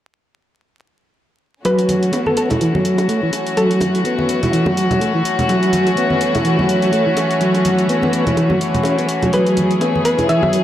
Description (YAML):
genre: breakbeat, breaks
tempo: 125 BPM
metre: 4/4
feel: swing 57% on 16ths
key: F# minor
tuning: A4 = 440 Hz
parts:
  - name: warm studio string section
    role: sustained chords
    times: 1.6-10.6 s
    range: E3 to G#4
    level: -18 LUFS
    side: left 1 dB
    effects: none
  - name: mellow tonewheel organ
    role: riff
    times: 1.6-10.6 s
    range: E3 to E4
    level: -17 LUFS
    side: equal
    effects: chorus vibrato, fast rotary speaker, low-pass filter, tape echo
  - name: electronic hi-hat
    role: drums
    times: 1.6-10.6 s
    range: none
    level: -30 LUFS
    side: right 1 dB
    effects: none
  - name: thumb-piano-like synth pluck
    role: melody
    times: 1.7-4.2, 9.3-10.5 s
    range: A4 to E5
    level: -20 LUFS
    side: left 1 dB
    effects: chorus, telephone sound, tape echo
  - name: bongos and congas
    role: percussion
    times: 1.7-10.5 s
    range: none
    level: -24 LUFS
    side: right 1 dB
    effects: none
room: moderate lush hall reverb, RT60 2.0 s, studio ambience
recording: dark, warm production, vinyl crackle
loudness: -14 LUFS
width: side -12 dB against mid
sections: 1.6-10.6 A section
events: filter sweep on tonewheel organ 1.6-10.6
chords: 1.6 F#m7